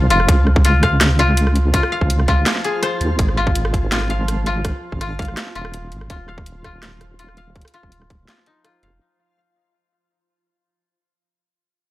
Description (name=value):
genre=half-time drum and bass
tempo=165 BPM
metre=4/4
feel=half-time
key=unclear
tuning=A4 = 440 Hz
part: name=koto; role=arpeggios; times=0.0-10.8 s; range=Eb4 to F5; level=-22 LUFS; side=left 3 dB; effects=low-pass filter, analog delay
part: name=deep soft wobble bass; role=bass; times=0.0-9.0 s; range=Eb1 to Eb2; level=-18 LUFS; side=equal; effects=chorus
part: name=backwards swelling texture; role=texture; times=0.0-9.0 s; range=F3 to F4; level=-31 LUFS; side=equal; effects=built-in reverb
part: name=drum and bass drum kit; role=drums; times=0.1-8.9 s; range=hi-hat, rim click, snare drum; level=-22 LUFS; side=equal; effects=overdrive, studio reverb
part: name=electronic kick drum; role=drums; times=0.3-8.2 s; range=none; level=-19 LUFS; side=equal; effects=overdrive, studio reverb
room=little or no reverb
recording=dry, gritty hardware recording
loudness=-15 LUFS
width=side -16 dB against mid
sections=0.0-9.0 A section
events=fade-out 0.0-9.0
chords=0.3 Db; 3.2 Ab5; 6.1 Ebsus2